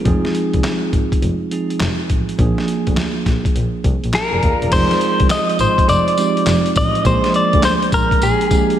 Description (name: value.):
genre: R&B, new jack swing.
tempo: 103 BPM.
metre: 4/4.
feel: swing 66% on 16ths.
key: F dorian.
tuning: A4 = 440 Hz.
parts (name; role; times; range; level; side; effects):
bell-like tine electric piano; accompaniment; 0.0-8.8 s; F3 to F5; -20 LUFS; right 3 dB; none.
dark double bass; bass; 0.1-8.3 s; E1 to Eb2; -21 LUFS; left 1 dB; none.
boom bap sampler-style drum kit; drums; 0.1-8.8 s; crash cymbal, handclaps, hi-hat, kick drum, snare drum, tambourine; -19 LUFS; equal; none.
direct-recorded clean electric guitar; melody; 4.1-8.8 s; Ab4 to Eb5; -16 LUFS; left 1 dB; slapback echo.
room: wet lush hall reverb, RT60 2.0 s.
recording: big arena sound.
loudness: -14 LUFS.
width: side -10 dB against mid.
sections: 0.0-4.7 A section; 4.7-8.8 B section.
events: none.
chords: 0.1 Fm7; 2.4 Bb7; 4.7 Fm7; 7.0 Bb7.